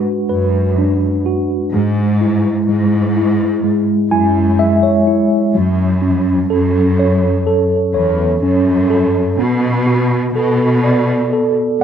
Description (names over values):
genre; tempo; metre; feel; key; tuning
pop ballad; 63 BPM; 4/4; straight; F# minor; A4 = 440 Hz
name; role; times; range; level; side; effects
mellow tine electric piano; accompaniment; 0.0-11.8 s; F#3 to G#5; -14 LUFS; equal; medium stereo tremolo
warm studio cello section; bass; 0.3-11.8 s; E2 to B2; -17 LUFS; equal; none
room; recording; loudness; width
wet lush hall reverb, RT60 2.2 s; dreamy mix soaked in reverb; -12 LUFS; side -8 dB against mid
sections
0.0-11.8 A section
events
tine electric piano fill 3.6-5.5, 11.3-11.8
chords
0.0 G#m7b5; 1.7 C#madd11; 5.5 F#m; 9.4 Bm7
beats
0.78 | 1.74 2.69 3.64 4.59 | 5.55 6.50 7.46 8.42 | 9.39 10.36 11.33